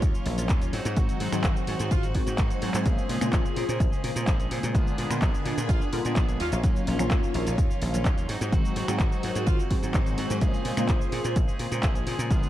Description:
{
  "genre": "filtered disco house",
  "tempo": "127 BPM",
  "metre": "4/4",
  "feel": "straight",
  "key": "Bb minor",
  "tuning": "A4 = 440 Hz",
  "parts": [
    { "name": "funky polysynth comp", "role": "accompaniment", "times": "0.0-12.5 s", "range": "Db3 to C5", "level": "-31 LUFS", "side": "left 1 dB", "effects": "chorus, phaser, cassette tape, sidechain pumping" },
    { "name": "string machine, full ensemble", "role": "sustained chords", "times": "0.0-12.5 s", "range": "D4 to Cb6", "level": "-36 LUFS", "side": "equal", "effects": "phaser, ensemble chorus, sidechain pumping" },
    { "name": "clean electric guitar", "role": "riff", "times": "0.0-12.5 s", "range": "F3 to Ab4", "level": "-36 LUFS", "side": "right 2 dB", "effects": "sidechain pumping" },
    { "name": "dry thumbed slap bass", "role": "bass", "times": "0.0-12.4 s", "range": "Ab1 to Bb2", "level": "-30 LUFS", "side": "equal", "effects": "sidechain pumping" },
    { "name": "electronic kick drum", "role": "drums", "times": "0.0-12.4 s", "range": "none", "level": "-25 LUFS", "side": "equal", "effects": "none" },
    { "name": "punchy analog drum machine", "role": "drums", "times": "0.0-12.5 s", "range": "cabasa, finger snaps, handclaps, hi-hat", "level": "-35 LUFS", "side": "equal", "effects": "sidechain pumping on hats, sidechain pumping on perc" },
    { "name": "clear horn section", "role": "melody", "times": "1.9-2.0, 5.7-6.6, 9.5-9.6 s", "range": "F4", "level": "-36 LUFS", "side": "equal", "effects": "sidechain pumping" }
  ],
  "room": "light reverb, digital ambience",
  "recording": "dark, warm production",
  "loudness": "-23 LUFS",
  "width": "side -13 dB against mid",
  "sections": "0.0-12.5 A section",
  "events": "drum fill 2.4-2.9",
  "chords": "0.0 Ebm9; 0.7 Ab7; 2.9 Bbm9; 4.7 Bb7b9; 6.4 Ebm9; 8.3 Ab7; 10.4 Bbm9"
}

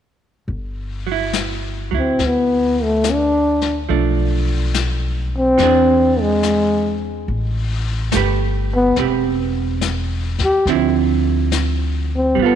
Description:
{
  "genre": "jazz ballad",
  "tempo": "70 BPM",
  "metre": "4/4",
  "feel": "swing 69% on 8ths",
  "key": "G major",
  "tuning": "A4 = 440 Hz",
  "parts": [
    { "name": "upright bass", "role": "bass", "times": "0.5-12.6 s", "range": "E1 to E2", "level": "-21 LUFS", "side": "left 1 dB", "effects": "none" },
    { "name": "vintage brush drum kit", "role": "drums", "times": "0.5-12.6 s", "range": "brushed snare drum, hi-hat, snare drum", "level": "-27 LUFS", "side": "left 10 dB", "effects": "none" },
    { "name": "vintage hollow-body jazz guitar", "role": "accompaniment", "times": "1.1-12.6 s", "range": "D3 to B4", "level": "-21 LUFS", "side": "right 12 dB", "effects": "none" },
    { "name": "breathy trombone", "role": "melody", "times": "2.0-12.6 s", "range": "G#3 to G4", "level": "-16 LUFS", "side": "left 2 dB", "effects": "none" }
  ],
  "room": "light reverb, studio reverb",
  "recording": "1960s-style stereo with parts hard left and right",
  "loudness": "-15 LUFS",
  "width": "side -9 dB against mid",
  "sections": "0.5-12.6 A section",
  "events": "none",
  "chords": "0.5 G5; 3.9 Bm7b5; 5.6 Eaug7; 7.3 Am9; 10.7 Dm9"
}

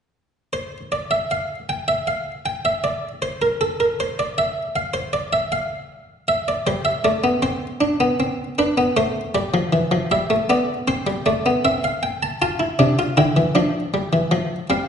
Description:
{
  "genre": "classical, baroque-style 3-part fugue for harpsichord",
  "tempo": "78 BPM",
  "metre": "4/4",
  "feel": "straight",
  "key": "unclear",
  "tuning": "A4 = 440 Hz",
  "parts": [
    { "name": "buff-stop harpsichord", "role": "solo", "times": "0.5-14.9 s", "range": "C3 to A5", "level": "-18 LUFS", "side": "equal", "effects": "none" }
  ],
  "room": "wet recital hall reverb, RT60 1.4 s",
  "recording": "heard from further back in the room, nothing above 10.4 kHz",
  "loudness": "-19 LUFS",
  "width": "side -7 dB against mid",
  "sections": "0.1-14.9 A section",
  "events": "none",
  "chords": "0.1 N.C.; 6.3 C; 7.8 D5; 9.3 G7; 10.9 C; 12.4 F; 13.9 G5"
}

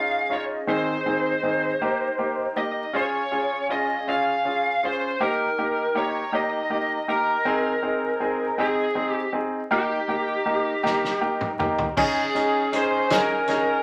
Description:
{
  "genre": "six-eight pop ballad",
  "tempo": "53 BPM (dotted quarters)",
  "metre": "6/8",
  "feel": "straight",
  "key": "unclear",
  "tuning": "A4 = 440 Hz",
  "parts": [
    { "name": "lead guitar through a small cranked amp", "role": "melody", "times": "0.0-13.8 s", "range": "G4 to F5", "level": "-28 LUFS", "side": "equal", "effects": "overdrive" },
    { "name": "clear baby grand piano", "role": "accompaniment", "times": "0.0-13.7 s", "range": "Eb3 to Ab4", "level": "-28 LUFS", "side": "equal", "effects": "none" },
    { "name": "breathy mellow large flute ensemble", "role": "sustained chords", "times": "0.0-13.8 s", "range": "Db4 to Bb5", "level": "-34 LUFS", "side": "equal", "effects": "none" },
    { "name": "loose indie drum kit", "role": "drums", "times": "10.9-13.7 s", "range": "crash cymbal, hi-hat, kick drum, snare drum, toms", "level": "-32 LUFS", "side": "equal", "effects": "none" }
  ],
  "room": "wet club reverb, RT60 0.5 s",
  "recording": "vinyl crackle",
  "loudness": "-24 LUFS",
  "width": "mono",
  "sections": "0.0-12.0 A section; 12.0-13.8 B section",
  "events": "drum fill 10.8-12.0",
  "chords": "0.0 Dbadd9; 0.7 Ab/Eb; 1.8 Eb; 2.9 Db; 5.2 Eb; 7.5 Ab; 9.7 Eb; 12.0 Dbsus2"
}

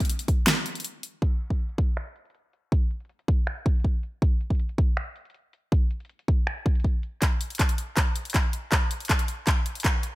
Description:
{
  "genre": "future bass",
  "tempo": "160 BPM",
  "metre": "4/4",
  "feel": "half-time",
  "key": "none",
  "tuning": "none",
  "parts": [
    { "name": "electronic kick drum", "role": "drums", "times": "0.0-9.9 s", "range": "none", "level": "-23 LUFS", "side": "equal", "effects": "none" },
    { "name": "pop drum kit", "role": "drums", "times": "0.0-10.1 s", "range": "crash cymbal, finger snaps, handclaps, hi-hat, snare drum", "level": "-27 LUFS", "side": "equal", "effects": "high-pass filter on snare, low-pass filter on snare, high-pass filter on hats, low-pass filter on hats, high-pass filter on cymbals, low-pass filter on cymbals" }
  ],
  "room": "digital ambience",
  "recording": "none",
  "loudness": "-23 LUFS",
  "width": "side -18 dB against mid",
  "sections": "0.0-1.2 A section; 1.2-7.2 B section; 7.2-10.2 C section",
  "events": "drop 0.0-1.2; kick drops out 0.5-1.2; build-up 7.2-10.2; drum fill 7.2-10.2",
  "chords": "none"
}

